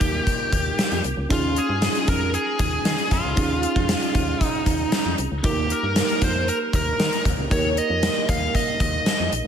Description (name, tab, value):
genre	1980s-style pop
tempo	116 BPM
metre	4/4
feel	straight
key	Eb mixolydian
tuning	A4 = 440 Hz
part	biting lead guitar	melody	0.0-9.3 s	F4 to F5	-24 LUFS	equal	overdrive, tape echo, slapback echo
part	mellow FM electric piano	accompaniment	0.0-9.5 s	Bb3 to Bb4	-27 LUFS	right 3 dB	chorus, slapback echo
part	solid FM bass	bass	0.0-9.4 s	Bb1 to Eb3	-27 LUFS	equal	none
part	gated 80s drum kit	drums	0.0-9.4 s	hi-hat, kick drum, snare drum	-23 LUFS	equal	none
room	moderate lush hall reverb, RT60 2.0 s, small room ambience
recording	big arena sound, lossy compression artefacts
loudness	-19 LUFS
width	side -8 dB against mid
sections	0.0-9.5 A section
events	none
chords	0.0 Eb; 1.3 Dbadd9; 5.4 Eb